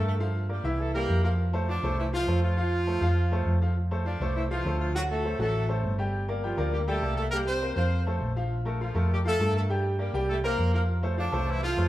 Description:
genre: latin, salsa.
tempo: 202 BPM.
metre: 4/4.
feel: straight.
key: F major.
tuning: A4 = 441 Hz.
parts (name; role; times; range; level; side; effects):
bright horn section; melody; 0.0-11.9 s; E3 to D5; -31 LUFS; equal; none.
bright upright piano; accompaniment; 0.0-11.9 s; E3 to G5; -31 LUFS; equal; none.
hollow-body short-scale fingered electric bass; bass; 0.0-11.9 s; G1 to G2; -27 LUFS; equal; none.
room: wet large studio reverb, RT60 1.4 s.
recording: band playing live in one room.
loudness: -25 LUFS.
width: side -15 dB against mid.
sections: 0.0-3.8 A section; 3.8-11.9 A section.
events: none.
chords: 0.2 Gm7; 0.8 C7; 1.4 F6; 4.9 D7; 6.1 Gm7; 7.3 C5; 7.9 F; 8.5 Bb5; 9.7 Gm; 10.3 C5; 10.9 F6.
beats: | 0.20 0.50 0.79 1.09 | 1.39 1.68 1.98 2.27 | 2.57 2.87 3.17 3.46 | 3.76 4.05 4.35 4.65 | 4.95 5.24 5.54 5.84 | 6.13 6.43 6.73 7.02 | 7.32 7.62 7.91 8.21 | 8.51 8.80 9.10 9.40 | 9.69 9.99 10.29 10.58 | 10.88 11.18 11.47 11.77.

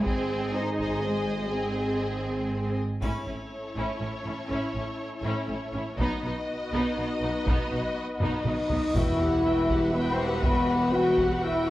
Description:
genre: cinematic, epic orchestral film score.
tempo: 121 BPM.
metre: 3/4.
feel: straight.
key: unclear.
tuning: A4 = 437 Hz.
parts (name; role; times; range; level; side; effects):
rich symphonic violin section; melody; 0.0-11.7 s; G#4 to G5; -38 LUFS; left 2 dB; none.
rich symphonic violin section; second line; 0.0-11.7 s; D#4 to G#5; -37 LUFS; left 1 dB; none.
rich symphonic viola section; accompaniment; 0.0-11.7 s; B3 to G#4; -34 LUFS; equal; none.
rich symphonic cello section; bass; 0.0-11.7 s; E2 to D#4; -33 LUFS; right 1 dB; none.
dark French horn section; sustained chords; 0.1-11.7 s; B3 to G#4; -30 LUFS; left 2 dB; none.
rich symphonic double bass section; bass; 0.1-11.7 s; E1 to B1; -34 LUFS; right 2 dB; none.
taiko ensemble; drums; 0.1-11.6 s; none; -30 LUFS; equal; none.
rich symphonic string section; sustained chords; 3.0-11.7 s; G3 to E5; -36 LUFS; equal; none.
triangle; percussion; 3.0-4.0 s; none; -54 LUFS; equal; none.
cymbal swell and sub drop; sound effects; 8.5-10.4 s; none; -38 LUFS; equal; none.
mellow trumpet section; stabs; 8.5-11.7 s; B4 to F#5; -32 LUFS; equal; none.
timpani; percussion; 8.9-9.6 s; E2; -35 LUFS; equal; none.
room: wet recital hall reverb, RT60 1.6 s.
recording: worn, warbling old tape, cassette tape, warbly pitch drift.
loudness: -25 LUFS.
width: side -15 dB against mid.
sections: 0.0-3.0 A section; 3.0-9.0 B section; 9.0-11.7 C section.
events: drum fill 8.2-9.0; cymbal swell 8.5-9.0; impact 9.0-10.4.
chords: 0.1 G#; 3.0 A; 6.0 B; 9.0 Emadd9.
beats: | 0.05 0.55 1.04 | 1.53 2.03 2.52 | 3.02 3.51 4.01 | 4.50 5.00 5.49 | 5.99 6.48 6.98 | 7.47 7.96 8.46 | 8.95 9.45 9.94 | 10.43 10.93 11.42.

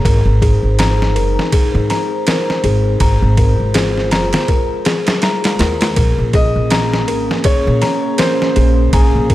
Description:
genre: trip hop.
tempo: 81 BPM.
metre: 4/4.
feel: swing 59% on 16ths.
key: Bb minor.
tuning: A4 = 440 Hz.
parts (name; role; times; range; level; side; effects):
dark analog pad; sustained chords; 0.0-9.3 s; Ab3 to C5; -22 LUFS; right 1 dB; wide subtle chorus.
music box; arpeggios; 0.0-9.3 s; Ab4 to Bb5; -20 LUFS; left 4 dB; vintage 12-bit sampler grit, tape echo.
upright bass; bass; 0.0-9.3 s; Gb1 to Bb2; -14 LUFS; equal; none.
trip hop sampler-style drum kit; drums; 0.1-9.3 s; kick drum, ride cymbal, snare drum; -16 LUFS; equal; overdrive.
felt-muted upright piano; melody; 6.3-9.3 s; Ab4 to Eb5; -20 LUFS; left 1 dB; tape echo.
room: light reverb, small room ambience.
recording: none.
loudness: -12 LUFS.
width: side -15 dB against mid.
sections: 0.0-6.0 A section; 6.0-9.3 B section.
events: none.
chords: 0.0 Ab; 6.0 Bbm7.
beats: | 0.04 0.79 1.53 2.27 | 3.01 3.75 4.49 5.23 | 5.97 6.71 7.45 8.19 | 8.93.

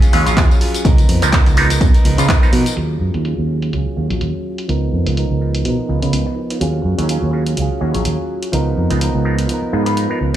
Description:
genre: filtered disco house.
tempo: 125 BPM.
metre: 4/4.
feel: swing 56% on 16ths.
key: Eb minor.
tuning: A4 = 440 Hz.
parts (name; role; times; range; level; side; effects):
direct-recorded clean electric guitar; riff; 0.0-10.4 s; F3 to Bb4; -23 LUFS; right 1 dB; sidechain pumping, low-pass filter.
fingered electric bass; bass; 0.0-10.4 s; Bb1 to Db3; -17 LUFS; right 1 dB; sidechain pumping, low-pass filter.
punchy analog drum machine; drums; 0.0-10.4 s; handclaps, hi-hat, tambourine; -24 LUFS; equal; sidechain pumping on hats, low-pass filter on hats, sidechain pumping on perc, low-pass filter on perc, low-pass filter on snare, low-pass filter on room.
auto-wah clav; accompaniment; 0.1-10.4 s; F3 to Db5; -23 LUFS; equal; phaser, vintage 12-bit sampler grit, sidechain pumping, low-pass filter.
electronic kick drum; drums; 0.4-2.4 s; none; -13 LUFS; equal; none.
room: digital ambience.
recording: studio reverb.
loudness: -14 LUFS.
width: side -12 dB against mid.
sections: 0.0-2.8 A section; 2.8-10.4 B section.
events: filter sweep 2.8-10.4.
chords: 0.0 Ebm11; 0.9 Db13; 2.8 Ebm11; 4.7 Db13; 6.6 Ebm11; 8.5 Db13.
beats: 0.37 | 0.85 1.33 1.81 2.29 | 2.77 3.25 3.73 4.21 | 4.69 5.17 5.65 6.13 | 6.61 7.09 7.57 8.05 | 8.53 9.01 9.49 9.97.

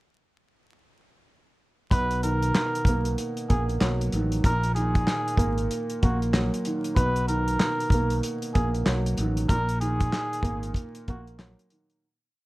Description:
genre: hip hop, boom-bap hip-hop.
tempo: 95 BPM.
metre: 4/4.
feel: swing 60% on 16ths.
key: B major.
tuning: A4 = 440 Hz.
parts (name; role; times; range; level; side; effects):
trumpet with cup mute; melody; 1.9-11.3 s; F#4 to B4; -29 LUFS; equal; high-pass filter, low-pass filter, slapback echo, plate reverb.
dark baby grand piano; accompaniment; 1.9-12.0 s; A#2 to A#3; -29 LUFS; right 1 dB; high-pass filter, low-pass filter, plate reverb.
fingered electric bass; bass; 1.9-11.5 s; G#1 to B1; -27 LUFS; equal; none.
cloth-damped thuddy drum kit; drums; 1.9-12.0 s; handclaps, hi-hat, kick drum, snare drum; -26 LUFS; equal; none.
room: moderate studio reverb, RT60 0.5 s.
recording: vinyl crackle.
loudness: -23 LUFS.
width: side -19 dB against mid.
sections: 1.9-12.0 verse.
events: fade-out 9.5-12.0.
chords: 1.9 Bmaj7; 4.4 D#m; 7.0 Bmaj7; 9.5 D#m.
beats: | 1.92 2.55 3.18 3.81 | 4.44 5.07 5.71 6.34 | 6.97 7.60 8.23 8.86 | 9.49 10.13 10.76 11.39.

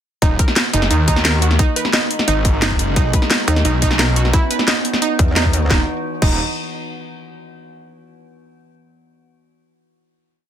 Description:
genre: dark technical drum and bass.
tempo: 175 BPM.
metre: 4/4.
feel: straight.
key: Eb phrygian.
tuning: A4 = 438 Hz.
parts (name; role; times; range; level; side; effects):
metallic inharmonic drone; sustained chords; 1.4-5.9 s; B3 to Eb4; -26 LUFS; equal; chorus, built-in reverb, sidechain pumping.
analog pluck; arpeggios; 0.2-6.4 s; Eb4 to Eb5; -22 LUFS; right 5 dB; chorus, sidechain pumping, tape echo.
snarling distorted saw bass; bass; 0.2-6.4 s; Eb1 to Eb2; -18 LUFS; equal; distortion, overdrive.
drum and bass drum kit; drums; 0.2-6.3 s; crash cymbal, hi-hat, snare drum; -18 LUFS; left 1 dB; none.
electronic kick drum; drums; 0.2-6.3 s; none; -16 LUFS; equal; overdrive.
metallic wobble bass; bass; 3.5-5.7 s; D#2 to E2; -17 LUFS; equal; chorus.
room: light reverb, digital ambience.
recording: dense, heavily limited modern master.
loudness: -14 LUFS.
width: side -10 dB against mid.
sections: 0.2-5.7 drop; 5.7-7.1 final chord.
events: drop 0.2-5.7.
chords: 0.2 Ebm; 1.6 Ab7(no3); 3.0 Badd9; 4.3 E5; 5.7 Eb5.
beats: | 0.22 0.56 0.91 1.25 | 1.59 1.94 2.28 2.62 | 2.96 3.31 3.65 3.99 | 4.33 4.68 5.02 5.36 | 5.71 6.05.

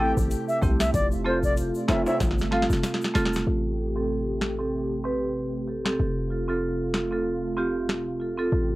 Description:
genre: dancehall.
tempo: 95 BPM.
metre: 4/4.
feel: swing 56% on 16ths.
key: unclear.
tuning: A4 = 440 Hz.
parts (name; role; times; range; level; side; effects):
bright reedy baroque flute; melody; 0.0-2.7 s; C5 to G5; -28 LUFS; left 1 dB; tape echo.
marimba with medium hard mallets; accompaniment; 0.0-8.5 s; A3 to B4; -27 LUFS; right 2 dB; sidechain pumping, low-pass filter, cassette tape.
warm analog pad; sustained chords; 0.0-8.8 s; C3 to G4; -34 LUFS; equal; chorus, sidechain pumping, low-pass filter, cassette tape.
hard-hitting 808-style bass; bass; 0.0-8.8 s; E1 to C2; -29 LUFS; equal; none.
booming analog drum machine; drums; 0.2-8.1 s; hi-hat, kick drum, snare drum; -27 LUFS; equal; none.
egg shaker and timbales; percussion; 0.2-3.5 s; none; -36 LUFS; left 3 dB; none.
room: light reverb.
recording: home recording on cassette.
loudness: -23 LUFS.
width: side -18 dB against mid.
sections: 0.0-3.5 A section; 3.5-8.8 B section.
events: drum fill 2.2-3.5; filter sweep 3.5-8.8.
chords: 0.0 Am7; 0.9 F; 3.5 Am7; 6.0 F.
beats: 0.31 | 0.94 1.57 2.21 2.84 | 3.47 4.10 4.73 5.36 | 5.99 6.63 7.26 7.89 | 8.52.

